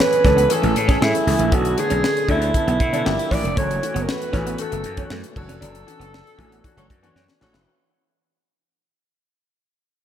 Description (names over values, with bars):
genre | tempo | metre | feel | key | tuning
polished 1980s jazz-funk pop | 117 BPM | 4/4 | straight | unclear | A4 = 439 Hz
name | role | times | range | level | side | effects
breathy alto saxophone | melody | 0.0-7.1 s | E4 to D5 | -21 LUFS | right 2 dB | none
clear grand piano | accompaniment | 0.0-7.7 s | D3 to A4 | -26 LUFS | left 3 dB | analog chorus, slapback echo
clean electric guitar | riff | 0.0-7.6 s | G#3 to E4 | -29 LUFS | right 3 dB | lush chorus, slapback echo
tight funk drum kit | drums | 0.0-7.7 s | crash cymbal, hi-hat, kick drum, snare drum | -23 LUFS | left 1 dB | none
gritty slap bass | bass | 0.2-7.6 s | F1 to B2 | -23 LUFS | equal | overdrive
warm horn section | second line | 6.8-7.7 s | F#4 to C#5 | -57 LUFS | right 1 dB | none
room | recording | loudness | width
wet lush hall reverb, RT60 2.0 s, small room ambience | big arena sound | -17 LUFS | side -10 dB against mid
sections
0.0-7.7 A section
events
fade-out 0.0-7.7; band accent 5.6-7.7; drum fill 7.2-7.7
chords
0.0 Amaj7; 1.5 Bm9; 3.1 Gm7; 3.6 F#m7; 5.4 Dmaj9